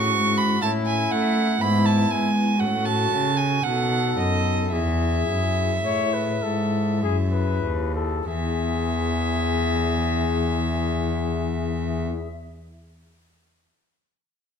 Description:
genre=classical, baroque-style sonata movement with continuo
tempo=48-62 BPM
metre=3/4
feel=straight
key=E major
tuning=A4 = 440 Hz
part: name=warm trumpet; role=melody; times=0.0-12.1 s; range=E4 to C#5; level=-29 LUFS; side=left 10 dB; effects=none
part: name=warm violin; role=second line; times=0.0-12.1 s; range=D#5 to C#6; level=-26 LUFS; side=right 6 dB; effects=none
part: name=pipe organ, stopped flute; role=accompaniment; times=0.0-12.3 s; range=D#2 to E5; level=-27 LUFS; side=left 3 dB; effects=none
part: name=rich cello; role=bass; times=0.0-12.1 s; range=D#2 to A3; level=-24 LUFS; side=equal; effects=none
room=wet recital hall reverb, RT60 1.4 s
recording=none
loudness=-20 LUFS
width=side -7 dB against mid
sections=0.0-8.3 A section; 8.3-12.1 B section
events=slowing down 0.1-8.3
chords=0.0 C#m; 0.6 A; 1.6 E/G#; 2.6 F#m/A; 3.6 B7; 4.7 E

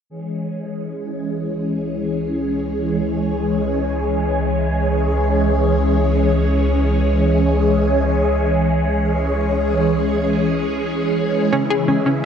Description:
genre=ambient, sequencer-driven space music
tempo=free time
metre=none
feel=none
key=C# minor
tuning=A4 = 440 Hz
part: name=phased string machine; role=sustained chords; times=0.1-12.2 s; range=C#3 to C#5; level=-18 LUFS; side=equal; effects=ensemble chorus, phaser
part: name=round analog bass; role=bass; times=0.1-12.2 s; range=C#2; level=-22 LUFS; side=equal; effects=none
part: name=vibraphone with hard mallets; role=arpeggios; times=11.5-12.2 s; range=C#4 to C#5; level=-38 LUFS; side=left 4 dB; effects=none
part: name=analog pluck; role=riff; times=11.5-12.2 s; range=C#4 to G#4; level=-18 LUFS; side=equal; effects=chorus, tape echo
room=wet lush hall reverb, RT60 2.5 s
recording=dark, warm production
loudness=-16 LUFS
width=side -8 dB against mid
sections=0.1-11.5 A section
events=fade-in on analog synth bass 0.1-11.5; filter sweep on string machine 0.1-11.5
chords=0.1 C#m

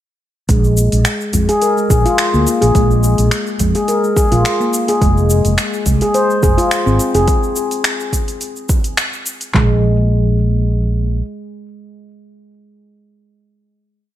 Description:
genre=organic downtempo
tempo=106 BPM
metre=4/4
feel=swing 54% on 16ths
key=unclear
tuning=A4 = 440 Hz
part: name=handpan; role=arpeggios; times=0.5-9.8 s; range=Ab3 to C5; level=-16 LUFS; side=left 1 dB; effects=tape echo
part: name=mellow fretless electric bass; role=bass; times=0.5-11.2 s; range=F1 to F2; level=-14 LUFS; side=equal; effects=ensemble chorus
part: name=deep house drum kit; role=drums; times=0.5-9.5 s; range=cabasa, finger snaps, hi-hat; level=-20 LUFS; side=equal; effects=studio reverb
part: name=organic electronic drum kit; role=drums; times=0.5-9.7 s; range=handclaps, kick drum, toms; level=-16 LUFS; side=right 1 dB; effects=overdrive, studio reverb
room=light reverb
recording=none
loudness=-12 LUFS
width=side -12 dB against mid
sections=0.5-9.5 groove; 9.5-11.8 final chord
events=none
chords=0.5 Bb7(no3); 5.0 Fm; 9.5 N.C.

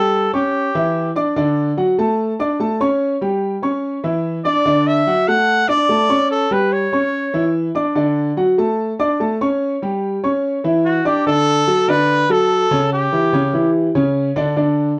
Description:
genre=latin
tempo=145 BPM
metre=4/4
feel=straight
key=D major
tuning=A4 = 440 Hz
part: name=warm trumpet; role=melody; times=0.0-1.1, 4.5-7.5, 10.9-13.7 s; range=F#4 to F#5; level=-19 LUFS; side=equal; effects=none
part: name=warm concert grand piano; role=arpeggios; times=0.0-14.9 s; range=C#3 to D6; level=-19 LUFS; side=equal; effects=slapback echo
room=light reverb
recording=dry, close 1970s-style studio recording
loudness=-17 LUFS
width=mono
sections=0.0-11.3 A section; 11.3-15.0 B section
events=none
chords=0.0 A7; 1.4 Dmaj7; 3.0 Em6; 4.7 Dmaj7; 6.3 Em6; 8.0 Dmaj7; 9.6 Em13; 11.3 Dmaj7; 12.9 C#dim

